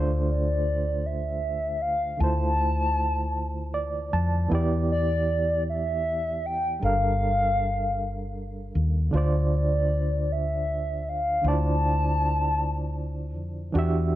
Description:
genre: slow six-eight R&B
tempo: 52 BPM (dotted quarters)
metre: 6/8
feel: straight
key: D minor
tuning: A4 = 438 Hz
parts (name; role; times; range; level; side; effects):
- overdriven reed electric piano; accompaniment; 0.0-14.2 s; D3 to A5; -30 LUFS; right 3 dB; fast tremolo
- woody fretless electric bass; bass; 0.0-14.2 s; G1 to F2; -26 LUFS; equal; analog chorus
- hollow clarinet-like synth lead; melody; 0.3-13.4 s; D5 to A5; -27 LUFS; left 1 dB; chorus, slapback echo
room: little or no reverb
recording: none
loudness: -23 LUFS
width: side -14 dB against mid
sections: 0.0-14.2 A section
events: reed electric piano fill 3.4-4.5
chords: 0.0 Dm9; 4.5 Em7; 6.8 Gm9; 9.1 Dm9

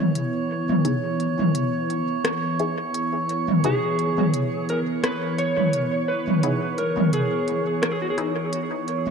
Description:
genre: ambient dub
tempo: 86 BPM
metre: 4/4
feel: swing 55% on 16ths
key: C# minor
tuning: A4 = 442 Hz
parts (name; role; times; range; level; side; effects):
- warm analog pad; sustained chords; 0.0-9.1 s; E3 to C#5; -27 LUFS; equal; chorus
- drifting glass-harmonics texture; texture; 0.0-9.1 s; C#5; -30 LUFS; right 6 dB; chorus, built-in reverb
- organic electronic drum kit; drums; 0.2-9.1 s; hi-hat, rim click, toms; -25 LUFS; equal; overdrive, dub echo
- filtered dub chord stab; stabs; 0.8-8.3 s; B3 to G#4; -31 LUFS; left 3 dB; phaser, wide subtle chorus, dub echo
- electric slide guitar; melody; 3.7-8.2 s; F#4 to C#5; -26 LUFS; left 1 dB; dub echo
room: wet lush hall reverb, RT60 1.8 s, digital ambience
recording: none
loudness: -21 LUFS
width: side -6 dB against mid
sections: 0.0-9.1 A section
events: none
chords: 0.0 C#m7

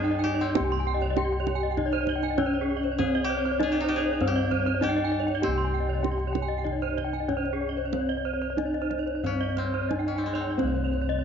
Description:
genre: Balinese gamelan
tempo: 88-99 BPM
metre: 4/4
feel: straight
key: C pelog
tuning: A4 = 441 Hz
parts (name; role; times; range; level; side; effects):
- gamelan-type bronze metallophone; melody; 0.0-11.2 s; C4 to G4-30c; -29 LUFS; equal; none
- koto; second line; 0.0-11.2 s; Ab3-20c to C5; -36 LUFS; left 3 dB; none
- gamelan-type bronze metallophone; arpeggios; 0.0-11.2 s; C5 to Ab5-20c; -32 LUFS; left 10 dB; none
- gamelan-type bronze metallophone; arpeggios; 0.0-11.2 s; Ab4-20c to C6; -32 LUFS; right 12 dB; none
- gamelan-type bossed gongs; bass; 0.0-11.2 s; C2 to G4-30c; -30 LUFS; equal; none
- kendang; percussion; 0.1-11.2 s; none; -35 LUFS; right 10 dB; none
room: moderate plate reverb, RT60 3.2 s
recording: 1960s-style stereo with parts hard left and right, nothing above 7.5 kHz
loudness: -24 LUFS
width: side -7 dB against mid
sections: 0.0-10.6 A section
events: none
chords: none

